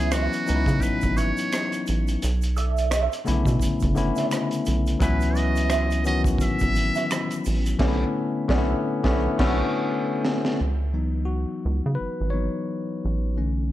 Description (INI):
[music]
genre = R&B, neo-soul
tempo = 86 BPM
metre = 4/4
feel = swing 58% on 16ths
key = C# phrygian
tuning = A4 = 440 Hz
[part]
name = trumpet with metal mute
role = melody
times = 0.0-7.4 s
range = F#4 to E5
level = -29 LUFS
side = right 1 dB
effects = tape echo
[part]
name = mellow electric guitar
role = second line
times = 0.0-9.6 s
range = E4 to E5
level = -30 LUFS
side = right 7 dB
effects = wah, ensemble chorus
[part]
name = barky tine electric piano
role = accompaniment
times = 0.0-13.7 s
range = C#3 to C#5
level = -25 LUFS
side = left 3 dB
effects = none
[part]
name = rubbery square bass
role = bass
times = 0.0-13.7 s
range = F#1 to C#3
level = -24 LUFS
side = right 1 dB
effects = none
[part]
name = crunchy breakbeat drum kit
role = drums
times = 0.1-10.6 s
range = crash cymbal, hi-hat, kick drum, rim click, snare drum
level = -28 LUFS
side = right 1 dB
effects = none
[part]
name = finger snaps and tube shaker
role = percussion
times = 0.1-7.8 s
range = none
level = -40 LUFS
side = right 8 dB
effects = none
[sound]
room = light reverb, small room reverb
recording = dark, warm production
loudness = -21 LUFS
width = side -14 dB against mid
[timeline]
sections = 0.0-10.6 A section; 10.6-13.7 B section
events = band accent 7.8-10.6; drum fill 9.9-10.6; tine electric piano solo 10.6-13.7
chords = 0.0 C#m11; 2.2 Bm11; 5.0 C#m11; 7.8 Bm11; 10.6 C#m11